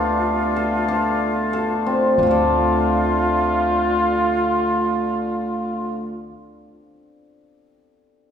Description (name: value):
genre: contemporary instrumental, chamber music in an uneven meter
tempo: 93 BPM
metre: 5/4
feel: straight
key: D dorian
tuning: A4 = 441 Hz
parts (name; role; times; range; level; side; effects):
- warm flugelhorn; melody; 0.0-6.1 s; F4; -22 LUFS; right 1 dB; none
- clear woodwind section; sustained chords; 0.0-6.1 s; D3 to F4; -23 LUFS; equal; none
- cimbalom; arpeggios; 0.0-6.4 s; B3 to D5; -22 LUFS; left 2 dB; none
- upright bass; bass; 0.0-6.3 s; D2; -29 LUFS; equal; none
room: wet recital hall reverb, RT60 1.9 s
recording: recorded in a church or concert hall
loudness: -17 LUFS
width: side -8 dB against mid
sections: 0.0-2.2 A section; 2.2-5.4 B section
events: slowing down 0.0-2.2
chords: 0.0 Dm